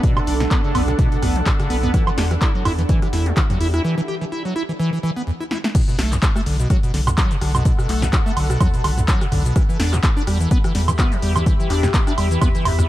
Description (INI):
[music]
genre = acid house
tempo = 126 BPM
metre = 4/4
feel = swing 56% on 16ths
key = B minor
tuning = A4 = 440 Hz
[part]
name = acid bass, square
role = riff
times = 0.0-12.9 s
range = B1 to G4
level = -23 LUFS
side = equal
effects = tube saturation, lush chorus, sidechain pumping, ping-pong delay
[part]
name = electronic kick drum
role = drums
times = 0.0-12.5 s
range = none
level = -18 LUFS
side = equal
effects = none
[part]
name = punchy analog drum machine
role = drums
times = 0.0-12.9 s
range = crash cymbal, handclaps, hi-hat, rim click, shaker, snare drum, toms, woodblock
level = -24 LUFS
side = right 1 dB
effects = none
[part]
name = granular cloud pad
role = texture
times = 0.0-12.9 s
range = D4 to B5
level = -28 LUFS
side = equal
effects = built-in reverb, sidechain pumping
[part]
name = saturated sub bass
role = bass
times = 0.3-12.9 s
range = B1 to E2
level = -20 LUFS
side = equal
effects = sidechain pumping
[sound]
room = little or no reverb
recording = dark, warm production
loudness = -16 LUFS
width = side -15 dB against mid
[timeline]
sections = 0.0-5.7 A section; 5.7-12.9 B section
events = break 3.8-5.7; drum fill 5.5; drop 5.7-12.9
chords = 0.0 Bm7; 1.9 Em7; 5.7 Bm7; 9.6 Em7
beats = | 0.04 0.51 0.99 1.46 | 1.94 2.42 2.89 3.37 | 3.84 4.32 4.80 5.27 | 5.75 6.22 6.70 7.18 | 7.65 8.13 8.61 9.08 | 9.56 10.04 10.51 10.99 | 11.46 11.94 12.42